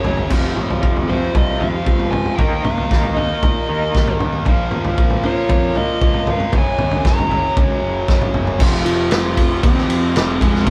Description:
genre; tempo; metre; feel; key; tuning
quiet-loud alternative rock; 116 BPM; 4/4; straight; unclear; A4 = 436 Hz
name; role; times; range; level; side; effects
dark smooth lead guitar; melody; 0.0-10.7 s; Ab3 to Bb5; -26 LUFS; equal; overdrive, analog delay
tight distorted guitar; riff; 0.0-10.7 s; F2 to Eb4; -24 LUFS; equal; distortion
loose indie drum kit; drums; 0.0-10.7 s; crash cymbal, kick drum, ride cymbal, snare drum, toms; -20 LUFS; equal; none
fuzz picked electric bass; bass; 0.1-10.7 s; F1 to Bb2; -26 LUFS; equal; overdrive
electric guitar through a small old amp; arpeggios; 0.3-4.4 s; F2 to Eb4; -29 LUFS; equal; tremolo
room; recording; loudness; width
moderate stone room reverb, RT60 1.3 s; band playing live in one room; -17 LUFS; mono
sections
0.3-8.6 A section; 8.6-10.7 B section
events
none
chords
0.3 F5; 2.4 Eb5; 4.5 Bbm; 6.5 Gb; 8.6 F5

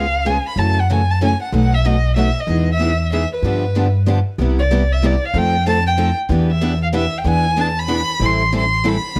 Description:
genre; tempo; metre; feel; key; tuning
acoustic string swing (jazz manouche); 188 BPM; 3/4; swing 60% on 8ths; C major from 4.4 s; A4 = 440 Hz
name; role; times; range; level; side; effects
dark violin; melody; 0.0-9.2 s; B4 to C6; -23 LUFS; equal; analog delay
picked steel-string acoustic guitar; accompaniment; 0.0-9.2 s; B2 to A4; -25 LUFS; equal; none
picked steel-string acoustic guitar; accompaniment; 0.0-9.2 s; B2 to B4; -28 LUFS; equal; none
upright bass; bass; 0.0-9.2 s; A1 to G2; -20 LUFS; equal; none
room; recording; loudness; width
light reverb; vinyl crackle; -17 LUFS; mono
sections
0.0-4.4 A section; 4.4-9.2 B section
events
none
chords
0.0 C#7; 0.6 F#m7; 1.5 B7; 2.5 Emaj7; 3.4 G7; 4.4 Cmaj9; 5.3 F9; 6.3 Em7; 7.3 E7; 8.2 Am9

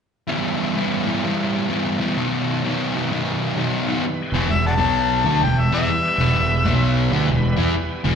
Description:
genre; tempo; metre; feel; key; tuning
rock; 129 BPM; 4/4; swing 65% on 8ths; E minor; A4 = 445 Hz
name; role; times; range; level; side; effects
fuzz guitar; riff; 0.3-8.2 s; E2 to E4; -20 LUFS; equal; distortion, slapback echo
bright tonewheel organ; sustained chords; 4.0-8.2 s; G3 to B4; -30 LUFS; right 3 dB; slow rotary speaker, chorus vibrato
fuzz fingered electric bass; bass; 4.3-8.2 s; E1 to E2; -22 LUFS; right 1 dB; overdrive
overdriven harmonica; melody; 4.5-7.1 s; D5 to A5; -21 LUFS; left 5 dB; slapback echo
room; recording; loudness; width
light reverb; live gig heard through the venue's PA, club reverb, nothing above 10.7 kHz; -18 LUFS; side -7 dB against mid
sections
0.3-4.0 A section; 4.0-8.2 B section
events
none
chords
0.3 Em; 2.2 B; 4.0 Em; 4.7 B5; 5.2 Em; 6.6 B5; 7.0 Em

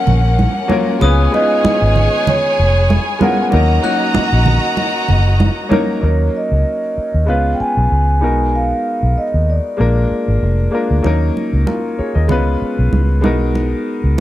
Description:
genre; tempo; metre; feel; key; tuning
lush 1970s-style soul; 96 BPM; 4/4; swing 54% on 16ths; Eb minor; A4 = 440 Hz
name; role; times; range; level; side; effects
vibraphone with soft mallets; melody; 0.0-10.7 s; Db5 to Ab5; -19 LUFS; right 1 dB; none
rich studio violin section; second line; 0.0-6.0 s; Db4 to Bb5; -20 LUFS; right 1 dB; none
clear baby grand piano; accompaniment; 0.0-14.2 s; F3 to Eb5; -19 LUFS; left 2 dB; none
vintage muted fingered electric bass; bass; 0.1-14.1 s; F1 to Eb2; -14 LUFS; equal; none
congas; percussion; 0.1-5.9, 11.0-13.7 s; none; -19 LUFS; right 3 dB; none
glockenspiel with brass mallets; texture; 1.0-5.3 s; Eb6 to Gb6; -27 LUFS; left 6 dB; none
room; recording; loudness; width
small room ambience; dry, close 1970s-style studio recording; -12 LUFS; side -14 dB against mid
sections
0.0-6.0 A section; 6.0-14.2 B section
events
none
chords
0.0 Gbmaj7; 1.0 Db7; 3.5 Ebm7; 7.3 Db7; 8.2 Abm9/Cb; 9.8 Bb7; 11.0 Ebm7; 12.3 Db7; 13.2 Abm9/Cb

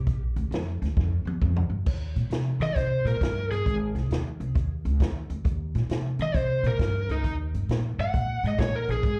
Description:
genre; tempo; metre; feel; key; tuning
electric blues shuffle; 134 BPM; 4/4; swing 66% on 8ths; Eb major; A4 = 440 Hz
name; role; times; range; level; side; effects
upright bass; bass; 0.0-9.2 s; G1 to Eb3; -29 LUFS; equal; none
swinging big-band drum kit; drums; 0.1-9.2 s; crash cymbal, hi-hat, kick drum, snare drum, toms; -30 LUFS; equal; none
lead guitar through a small cranked amp; melody; 2.6-9.2 s; Eb4 to Gb5; -32 LUFS; equal; overdrive, plate reverb, slapback echo
room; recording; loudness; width
light reverb; live gig heard through the venue's PA, cassette tape, club reverb; -27 LUFS; mono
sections
0.0-1.9 A section; 1.9-9.2 A section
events
drum fill 1.0-1.9; lead electric guitar solo 1.9-9.2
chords
0.1 Bb; 1.9 Eb; 3.7 Ab; 5.4 Eb

